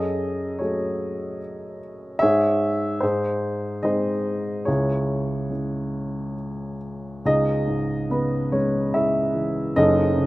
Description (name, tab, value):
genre	classical, lyrical solo piano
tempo	72 BPM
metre	3/4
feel	uneven beats, rubato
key	C# minor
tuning	A4 = 438 Hz
part	dark upright piano	solo	0.0-10.3 s	F#1 to E5	-21 LUFS	equal	none
room	light reverb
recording	close, detailed microphones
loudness	-21 LUFS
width	side -18 dB against mid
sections	0.0-7.3 A section; 7.3-10.3 A section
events	none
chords	0.0 F#madd9; 2.2 C#m/G#; 3.0 G#; 4.7 C#m; 7.3 C#madd9; 9.8 F#madd9